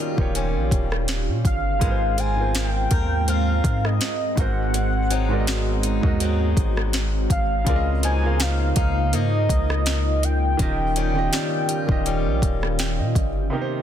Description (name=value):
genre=contemporary R&B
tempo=82 BPM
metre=4/4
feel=swing 54% on 16ths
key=Ab major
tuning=A4 = 439 Hz
part: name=warm grand piano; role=accompaniment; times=0.0-13.8 s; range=Ab2 to G5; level=-29 LUFS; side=right 2 dB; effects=none
part: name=ethereal airy pad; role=sustained chords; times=0.0-13.8 s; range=C3 to G4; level=-29 LUFS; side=right 1 dB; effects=ensemble chorus, built-in reverb
part: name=picked swing-style acoustic guitar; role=arpeggios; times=0.0-13.8 s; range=Ab2 to Bb4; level=-32 LUFS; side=left 8 dB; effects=ping-pong delay
part: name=long sustained 808-style bass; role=bass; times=0.2-13.5 s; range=Eb1 to Bb2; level=-23 LUFS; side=equal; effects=none
part: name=smooth R&B drum kit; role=drums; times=0.2-13.3 s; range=hi-hat, kick drum, rim click, snare drum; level=-24 LUFS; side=equal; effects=overdrive
part: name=warm velvety synth lead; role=melody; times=1.5-13.2 s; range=Eb5 to Ab5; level=-27 LUFS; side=equal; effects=chorus, ping-pong delay
room=little or no reverb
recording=dense, heavily limited modern master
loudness=-19 LUFS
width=side -10 dB against mid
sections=0.0-13.5 A section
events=grand piano fill 12.4-13.5; kick muted 13.5-13.8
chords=0.0 Eb9; 1.8 Ab69; 4.4 Ab7; 7.7 Db69; 10.6 Eb9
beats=0.35 1.08 | 1.81 2.54 3.28 4.01 | 4.74 5.47 6.20 6.93 | 7.67 8.40 9.13 9.86 | 10.59 11.32 12.06 12.79 | 13.52